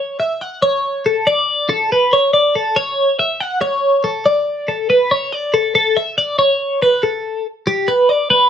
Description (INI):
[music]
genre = rock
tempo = 281 BPM (eighths)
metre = 7/8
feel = straight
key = D major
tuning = A4 = 440 Hz
[part]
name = twelve-string electric guitar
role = solo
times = 0.0-8.5 s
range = G4 to F#5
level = -13 LUFS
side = equal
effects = phaser
[sound]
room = moderate studio reverb, RT60 0.7 s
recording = none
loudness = -14 LUFS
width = side -8 dB against mid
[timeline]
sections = 0.0-5.8 A section; 5.8-8.5 B section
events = none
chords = none